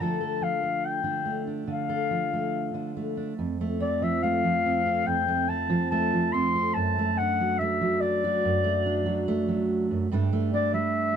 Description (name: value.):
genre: folk.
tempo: 71 BPM.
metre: 4/4.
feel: straight.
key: F major.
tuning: A4 = 440 Hz.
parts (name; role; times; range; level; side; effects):
breathy clarinet; melody; 0.0-11.2 s; D5 to C6; -27 LUFS; left 4 dB; none.
fingerpicked steel-string acoustic guitar; accompaniment; 0.0-11.2 s; F2 to A4; -26 LUFS; right 2 dB; none.
room: light reverb.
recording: dark, warm production.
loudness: -24 LUFS.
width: side -8 dB against mid.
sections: 0.0-3.4 A section; 3.4-11.2 B section.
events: none.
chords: 0.0 Dm; 3.4 F; 6.7 D/F#; 10.1 Gsus2.